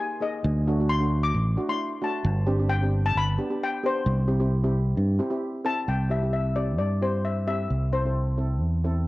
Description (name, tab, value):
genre	calypso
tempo	132 BPM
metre	4/4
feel	straight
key	C major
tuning	A4 = 440 Hz
part	steel pan	melody	0.0-9.1 s	C5 to D6	-29 LUFS	left 4 dB	none
part	steel pan	accompaniment	0.0-9.1 s	A3 to A4	-31 LUFS	right 1 dB	none
part	fingered electric bass	bass	0.4-9.1 s	G1 to G2	-24 LUFS	equal	none
room	light reverb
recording	home recording on cassette, nothing above 10.3 kHz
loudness	-23 LUFS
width	side -18 dB against mid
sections	0.0-5.9 A section; 5.9-9.1 B section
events	none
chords	0.4 D; 2.3 Gsus4; 3.2 G; 4.1 C; 7.7 Am/C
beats	| 0.45 0.90 1.35 1.80 | 2.26 2.71 3.16 3.61 | 4.07 4.52 4.97 5.43 | 5.88 6.34 6.79 7.25 | 7.71 8.16 8.62